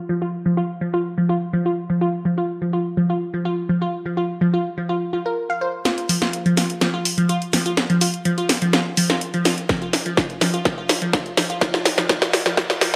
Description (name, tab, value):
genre	progressive house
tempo	125 BPM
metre	4/4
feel	straight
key	unclear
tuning	A4 = 440 Hz
part	glassy wavetable pluck	arpeggios	0.1-12.9 s	F3 to F5	-23 LUFS	equal	chorus, sidechain pumping, tape echo
part	house drum kit	drums	5.9-12.9 s	hi-hat, snare drum	-22 LUFS	equal	sidechain pumping on hats
part	electronic kick drum	drums	9.7-12.7 s	none	-25 LUFS	equal	overdrive
room	moderate digital room reverb, RT60 1.1 s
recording	high-pass filter, low-pass filter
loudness	-21 LUFS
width	mono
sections	0.0-5.9 A section; 5.9-13.0 B section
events	filter sweep on synth arpeggio sound 0.0-5.9; filter sweep 0.0-5.9; build-up 5.9-13.0; drum fill 5.9-13.0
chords	none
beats	| 0.09 0.57 1.05 1.53 | 2.01 2.49 2.97 3.45 | 3.93 4.41 4.89 5.37 | 5.85 6.33 6.81 7.29 | 7.77 8.25 8.73 9.21 | 9.69 10.17 10.65 11.13 | 11.61 12.09 12.57